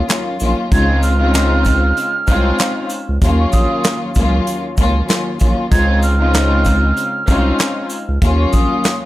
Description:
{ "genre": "hip hop, boom-bap hip-hop", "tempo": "96 BPM", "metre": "4/4", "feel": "swing 56% on 16ths", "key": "unclear", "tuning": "A4 = 440 Hz", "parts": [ { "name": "dark studio string section", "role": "accompaniment", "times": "0.0-9.1 s", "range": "Eb2 to F4", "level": "-18 LUFS", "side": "left 2 dB", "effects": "cassette tape, high-pass filter, low-pass filter" }, { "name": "saturated sub bass", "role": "bass", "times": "0.0-8.7 s", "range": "Bb1 to Eb2", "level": "-15 LUFS", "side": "equal", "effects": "none" }, { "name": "soft brush drum kit", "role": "drums", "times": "0.1-9.0 s", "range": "handclaps, hi-hat, kick drum, shaker, snare drum", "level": "-17 LUFS", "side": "equal", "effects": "none" }, { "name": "sleigh bells", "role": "percussion", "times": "0.1-9.0 s", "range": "none", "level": "-35 LUFS", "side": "right 2 dB", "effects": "none" }, { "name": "breathy mellow concert flute", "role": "melody", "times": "0.7-9.0 s", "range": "Db6 to Ab6", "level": "-21 LUFS", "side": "right 3 dB", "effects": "high-pass filter, low-pass filter" } ], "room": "small room ambience", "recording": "dry, gritty hardware recording", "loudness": "-13 LUFS", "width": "side -16 dB against mid", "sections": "0.0-9.1 A section", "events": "none", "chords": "0.0 Ebm7; 0.7 Dbmaj7; 3.2 Ebm7; 5.7 Dbmaj7; 8.2 Ebm7" }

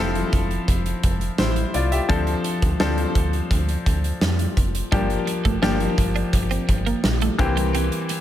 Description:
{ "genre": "1980s-style pop", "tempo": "85 BPM", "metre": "4/4", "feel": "straight", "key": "F major", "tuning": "A4 = 440 Hz", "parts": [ { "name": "bright grand piano", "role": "accompaniment", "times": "0.0-8.2 s", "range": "E3 to E5", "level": "-24 LUFS", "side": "left 3 dB", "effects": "none" }, { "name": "slap-like FM bass", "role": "bass", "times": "0.0-7.9 s", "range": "F1 to F2", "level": "-24 LUFS", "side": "equal", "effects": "none" }, { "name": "big rock drum kit", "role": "drums", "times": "0.2-8.2 s", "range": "hi-hat, kick drum, snare drum", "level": "-23 LUFS", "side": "equal", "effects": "none" }, { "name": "twelve-string electric guitar", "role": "riff", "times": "4.9-8.1 s", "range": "G3 to D4", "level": "-28 LUFS", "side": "right 7 dB", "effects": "analog chorus, digital delay" } ], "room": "light reverb, small room ambience", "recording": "none", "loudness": "-19 LUFS", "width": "side -12 dB against mid", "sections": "0.0-8.2 A section", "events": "none", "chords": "0.0 Fmaj7; 4.9 Gm7; 7.4 C7" }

